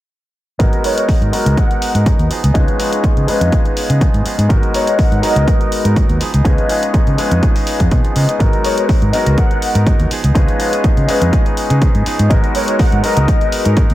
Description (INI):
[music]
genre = filtered disco house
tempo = 123 BPM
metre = 4/4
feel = swing 54% on 16ths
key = G# dorian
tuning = A4 = 440 Hz
[part]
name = bright concert grand piano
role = accompaniment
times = 0.6-13.9 s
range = G#3 to B4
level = -19 LUFS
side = left 2 dB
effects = phaser, sidechain pumping, low-pass filter
[part]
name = direct-recorded clean electric guitar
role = riff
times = 0.6-13.9 s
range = E#3 to A#4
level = -24 LUFS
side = right 5 dB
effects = sidechain pumping, low-pass filter
[part]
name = fingered electric bass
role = bass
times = 0.6-13.9 s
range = G#1 to C#3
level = -14 LUFS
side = equal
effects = tube saturation, sidechain pumping, low-pass filter
[part]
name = electronic hi-hat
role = drums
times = 0.6-13.9 s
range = none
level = -27 LUFS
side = left 1 dB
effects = sidechain pumping on hats
[part]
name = electronic kick drum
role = drums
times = 0.6-13.9 s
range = none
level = -14 LUFS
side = equal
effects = none
[part]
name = analog synth brass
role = melody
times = 0.8-13.5 s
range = C#5 to F#5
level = -22 LUFS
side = left 1 dB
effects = chorus, sidechain pumping, low-pass filter, ping-pong delay
[sound]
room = light reverb, digital ambience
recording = none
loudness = -12 LUFS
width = side -15 dB against mid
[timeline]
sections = 0.6-13.9 A section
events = filter sweep 0.6-13.9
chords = 0.6 G#m9; 2.3 C#9; 4.5 G#m9; 6.2 C#9; 8.4 G#m9; 10.1 C#9; 12.3 G#m9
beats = | 0.60 1.09 1.58 2.06 | 2.55 3.04 3.53 4.01 | 4.50 4.99 5.48 5.97 | 6.45 6.94 7.43 7.92 | 8.40 8.89 9.38 9.87 | 10.36 10.84 11.33 11.82 | 12.31 12.79 13.28 13.77